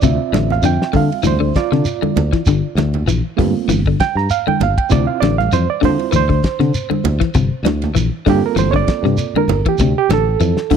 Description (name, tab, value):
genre	afrobeat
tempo	98 BPM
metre	4/4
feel	swing 54% on 16ths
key	G dorian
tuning	A4 = 440 Hz
part	overdriven reed electric piano	accompaniment	0.0-10.8 s	F3 to Bb5	-19 LUFS	right 14 dB	fast tremolo
part	clean electric guitar	arpeggios	0.0-10.8 s	C3 to E3	-19 LUFS	left 10 dB	analog chorus
part	fingered electric bass	bass	0.0-10.8 s	G1 to D3	-17 LUFS	equal	none
part	damped 70s drum kit	drums	0.0-10.8 s	hi-hat, kick drum, ride cymbal, snare drum	-19 LUFS	left 1 dB	none
part	shekere	percussion	0.0-10.8 s	none	-23 LUFS	right 2 dB	none
part	congas	percussion	0.3-10.8 s	none	-22 LUFS	right 10 dB	none
room	small room reverb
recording	dry, close 1970s-style studio recording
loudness	-13 LUFS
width	side -7 dB against mid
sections	0.0-10.8 A section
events	reed electric piano solo 0.0-10.8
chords	0.0 Dm9; 2.5 Gm11; 4.9 Dm9; 7.3 Gm11; 9.8 Dm9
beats	| 0.02 0.63 1.24 1.85 | 2.46 3.07 3.68 4.29 | 4.90 5.51 6.12 6.74 | 7.35 7.96 8.57 9.18 | 9.79 10.40